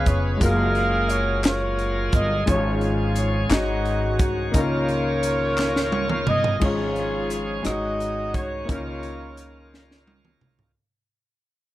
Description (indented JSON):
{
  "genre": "slow gospel",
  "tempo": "58 BPM (dotted quarters)",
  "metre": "6/8",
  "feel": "straight",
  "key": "Db major",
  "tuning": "A4 = 440 Hz",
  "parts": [
    { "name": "mellow horn section", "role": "melody", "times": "0.0-10.0 s", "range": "F4 to F5", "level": "-25 LUFS", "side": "equal", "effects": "slapback echo" },
    { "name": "clear grand piano", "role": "accompaniment", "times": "0.0-10.8 s", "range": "Ab2 to Db5", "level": "-27 LUFS", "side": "left 2 dB", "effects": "none" },
    { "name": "bright tonewheel organ", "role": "sustained chords", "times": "0.0-10.8 s", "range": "Eb3 to Ab5", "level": "-32 LUFS", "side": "right 2 dB", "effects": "slow rotary speaker, overdrive" },
    { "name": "upright bass", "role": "bass", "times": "0.0-10.7 s", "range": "F1 to Db2", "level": "-27 LUFS", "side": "equal", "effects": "none" },
    { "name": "crisp fusion drum kit", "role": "drums", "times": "0.1-10.7 s", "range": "crash cymbal, hi-hat, kick drum, rim click, snare drum, toms", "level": "-24 LUFS", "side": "equal", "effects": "none" },
    { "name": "group handclap", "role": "percussion", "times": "1.4-5.9 s", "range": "none", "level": "-30 LUFS", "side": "left 5 dB", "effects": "none" }
  ],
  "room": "little or no reverb",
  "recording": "none",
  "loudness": "-20 LUFS",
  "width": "side -15 dB against mid",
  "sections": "0.0-6.6 A section; 6.6-10.8 B section",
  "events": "drum fill 5.6-6.6, 9.7-10.8; tonewheel organ fill 5.6-6.6; fade-out 6.6-10.8",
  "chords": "0.4 Gbmaj9; 2.5 Db/Ab; 3.5 Ab7sus4; 4.5 Db69; 6.6 Db/Ab; 7.7 Ab7sus4; 8.7 Db69",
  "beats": "| 0.41 1.45 | 2.48 3.51 | 4.55 5.58 | 6.62 7.65 | 8.69 9.72"
}